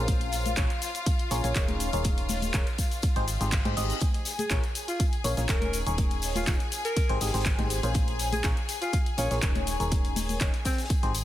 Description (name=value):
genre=piano house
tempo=122 BPM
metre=4/4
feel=straight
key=Bb dorian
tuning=A4 = 440 Hz
part: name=clear symphonic string section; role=sustained chords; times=0.0-11.2 s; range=F4 to Ab5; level=-36 LUFS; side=left 4 dB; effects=sidechain pumping
part: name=barking FM electric piano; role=riff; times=0.0-11.1 s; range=C4 to Eb5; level=-34 LUFS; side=left 1 dB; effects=phaser, sidechain pumping, digital delay
part: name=solid FM bass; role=bass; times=0.0-11.2 s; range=Eb1 to Ab2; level=-31 LUFS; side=equal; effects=sidechain pumping
part: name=electronic kick drum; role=drums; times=0.1-11.0 s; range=none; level=-27 LUFS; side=equal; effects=none
part: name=house drum kit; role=drums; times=0.1-11.2 s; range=handclaps, hi-hat, shaker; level=-34 LUFS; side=left 1 dB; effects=none
part: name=vintage drum kit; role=drums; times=0.1-11.2 s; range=hi-hat, snare drum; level=-44 LUFS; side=left 2 dB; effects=none
part: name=tambourine and congas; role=percussion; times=0.1-11.2 s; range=none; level=-38 LUFS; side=left 4 dB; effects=none
part: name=reverse cymbal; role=sound effects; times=3.3-4.0 s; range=none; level=-39 LUFS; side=left 7 dB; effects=none
part: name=breathy alto saxophone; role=melody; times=4.4-10.8 s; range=C4 to Bb4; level=-35 LUFS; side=equal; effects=digital delay
room=studio reverb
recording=dense, heavily limited modern master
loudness=-25 LUFS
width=side -13 dB against mid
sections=0.0-11.2 A section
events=reverse cymbal 3.3-4.0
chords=0.1 Bbm7; 1.8 Eb7sus4; 2.8 Abmaj7; 4.0 Bbm7; 5.7 Eb7sus4; 6.7 Abmaj7; 8.0 Bbm7; 9.7 Eb7sus4; 10.7 Abmaj7